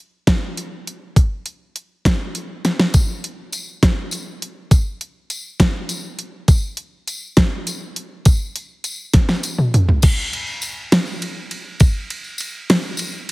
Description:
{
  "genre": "rock",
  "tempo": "68 BPM (dotted quarters)",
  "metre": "6/8",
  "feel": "straight",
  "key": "none",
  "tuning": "none",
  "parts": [
    { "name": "dubstep drum kit", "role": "drums", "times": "0.3-13.3 s", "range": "crash cymbal, hi-hat, kick drum, ride cymbal, snare drum, toms", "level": "-16 LUFS", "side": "equal", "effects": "none" },
    { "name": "tambourine", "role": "percussion", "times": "2.9-13.1 s", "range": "none", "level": "-30 LUFS", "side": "left 2 dB", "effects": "none" }
  ],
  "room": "light reverb, digital ambience",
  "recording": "heavily compressed radio sound",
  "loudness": "-17 LUFS",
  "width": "side -22 dB against mid",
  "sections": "0.0-10.0 A section; 10.0-13.3 B section",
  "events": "drum fill 2.6, 9.1-10.0",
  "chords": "none",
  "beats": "0.27 | 1.16 2.05 | 2.94 3.82 | 4.71 5.60 | 6.49 7.37 | 8.26 9.14 | 10.03 10.92 | 11.80 12.69"
}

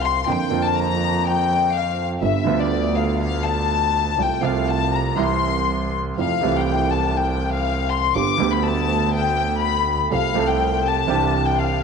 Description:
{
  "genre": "tango",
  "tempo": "122 BPM",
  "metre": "4/4",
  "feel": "rubato",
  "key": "F major",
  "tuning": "A4 = 441 Hz",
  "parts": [
    { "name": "warm chamber violin section", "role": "second line", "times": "0.0-11.8 s", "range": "D5 to D6", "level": "-22 LUFS", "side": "left 9 dB", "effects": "none" },
    { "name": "warm concert grand piano", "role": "accompaniment", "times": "0.0-11.8 s", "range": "G1 to A4", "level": "-23 LUFS", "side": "right 9 dB", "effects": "none" },
    { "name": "clear double bass", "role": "bass", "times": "0.0-11.8 s", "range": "G1 to F2", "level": "-24 LUFS", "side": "right 1 dB", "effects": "none" }
  ],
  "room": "moderate echo chamber reverb, RT60 2.4 s",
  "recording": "1960s-style stereo with parts hard left and right",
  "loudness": "-18 LUFS",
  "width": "side -5 dB against mid",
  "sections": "0.0-11.8 A section",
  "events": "violin section solo 0.0-11.8",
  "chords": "0.3 Bbadd9/F; 2.2 G7; 4.2 F/C; 5.2 C; 6.2 Fmaj7; 8.1 G; 10.1 F/C; 11.1 Cadd9",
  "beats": "| 0.26 0.75 1.24 1.73 | 2.22 2.71 3.20 3.69 | 4.18 4.68 5.18 5.68 | 6.18 6.67 7.17 7.66 | 8.15 8.64 9.13 9.61 | 10.10 10.59 11.08 11.57"
}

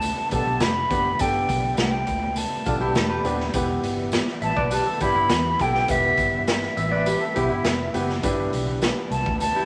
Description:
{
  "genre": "uptempo 1960s-style soul",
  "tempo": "102 BPM",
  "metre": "4/4",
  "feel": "straight",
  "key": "unclear",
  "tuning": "A4 = 440 Hz",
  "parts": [
    { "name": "hollow concert flute", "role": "melody", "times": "0.0-9.7 s", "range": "E5 to B5", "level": "-26 LUFS", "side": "equal", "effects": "none" },
    { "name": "overdriven tonewheel organ", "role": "sustained chords", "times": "0.0-9.7 s", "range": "E3 to B3", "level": "-37 LUFS", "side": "equal", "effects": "slow rotary speaker, chorus vibrato" },
    { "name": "vintage muted fingered electric bass", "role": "bass", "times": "0.0-9.5 s", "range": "Eb1 to E2", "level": "-32 LUFS", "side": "equal", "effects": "none" },
    { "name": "raw garage drum kit", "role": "drums", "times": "0.0-9.5 s", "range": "hi-hat, kick drum, snare drum", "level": "-30 LUFS", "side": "equal", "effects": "none" },
    { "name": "tambourine", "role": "percussion", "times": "0.0-9.5 s", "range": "none", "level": "-44 LUFS", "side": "equal", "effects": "none" },
    { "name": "warm upright piano", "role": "accompaniment", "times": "0.3-8.9 s", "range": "B3 to D5", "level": "-30 LUFS", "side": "equal", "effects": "none" },
    { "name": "mellow electric guitar", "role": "stabs", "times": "0.6-9.0 s", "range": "A3 to B4", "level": "-32 LUFS", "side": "equal", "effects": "none" },
    { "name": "clean electric guitar", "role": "riff", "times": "2.7-9.7 s", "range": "D4 to E5", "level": "-30 LUFS", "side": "equal", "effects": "vibrato effect" }
  ],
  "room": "wet studio reverb, RT60 0.7 s",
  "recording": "none",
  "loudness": "-23 LUFS",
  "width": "mono",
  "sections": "0.0-9.7 A section",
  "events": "none",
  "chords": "0.0 Gadd9; 3.5 Em; 8.2 G6",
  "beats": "0.03 0.61 | 1.20 1.78 2.37 2.96 | 3.54 4.13 4.71 5.30 | 5.89 6.47 7.06 7.65 | 8.24 8.82 9.41"
}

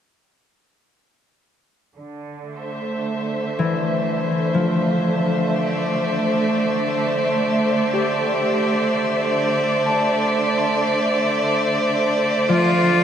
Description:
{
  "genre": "ambient",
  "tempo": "63 BPM",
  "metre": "3/4",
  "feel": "straight",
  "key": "D minor",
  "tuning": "A4 = 440 Hz",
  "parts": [
    { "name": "rich studio string section", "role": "sustained chords", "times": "2.0-13.0 s", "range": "D3 to E5", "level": "-19 LUFS", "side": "right 1 dB", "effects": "low-pass filter" },
    { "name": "concert harp", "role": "arpeggios", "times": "3.6-13.0 s", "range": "E3 to C6", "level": "-23 LUFS", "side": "left 2 dB", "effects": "tape echo" },
    { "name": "clear cello", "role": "melody", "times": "12.5-13.0 s", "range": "F4", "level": "-18 LUFS", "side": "left 1 dB", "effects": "none" }
  ],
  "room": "wet cathedral reverb, RT60 6.0 s",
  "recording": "none",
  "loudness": "-18 LUFS",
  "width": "side -9 dB against mid",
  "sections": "2.0-13.0 A section",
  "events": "filter sweep on string section 2.0-13.0",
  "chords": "2.0 Dm9",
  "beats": "| 2.00 2.95 3.90 | 4.86 5.81 6.76 | 7.71 8.67 9.62 | 10.57 11.52 12.48"
}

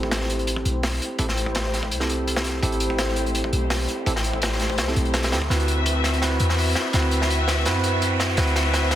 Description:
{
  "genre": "drum and bass, jungle",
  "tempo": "167 BPM",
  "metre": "4/4",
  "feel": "swing 53% on 16ths",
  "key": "A dorian",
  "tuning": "A4 = 437 Hz",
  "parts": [
    { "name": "dark studio string section", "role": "sustained chords", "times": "0.0-9.0 s", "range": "A3 to E5", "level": "-28 LUFS", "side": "left 2 dB", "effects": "vintage 12-bit sampler grit, low-pass filter" },
    { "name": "bell-like tine electric piano", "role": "stabs", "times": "0.0-9.0 s", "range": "C4 to B4", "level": "-27 LUFS", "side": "right 2 dB", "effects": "dub echo" },
    { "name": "warm 808-style bass", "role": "bass", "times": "0.0-9.0 s", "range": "A1 to F#2", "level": "-24 LUFS", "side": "equal", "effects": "none" },
    { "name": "crunchy breakbeat drum kit", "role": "drums", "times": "0.0-9.0 s", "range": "hi-hat, kick drum, snare drum", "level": "-26 LUFS", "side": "equal", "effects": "high-pass filter on kick, high-pass filter on hats, high-pass filter on snare, high-pass filter on room" },
    { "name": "riser", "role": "sound effects", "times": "2.0-9.0 s", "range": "none", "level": "-33 LUFS", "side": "equal", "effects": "none" }
  ],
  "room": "light reverb, small room ambience",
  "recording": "dense, heavily limited modern master",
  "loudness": "-20 LUFS",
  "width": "side -12 dB against mid",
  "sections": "0.0-9.0 A section",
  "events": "build-up 0.0-9.0; filter sweep on string section 0.0-9.0; riser 2.0-9.0; drum fill 5.5-9.0",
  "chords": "0.0 Am7; 5.5 D13",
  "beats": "0.11 0.47 0.83 | 1.19 1.55 1.91 2.27 | 2.63 2.99 3.35 3.71 | 4.07 4.42 4.78 5.14 | 5.50 5.86 6.22 6.58 | 6.94 7.30 7.66 8.02 | 8.38 8.74"
}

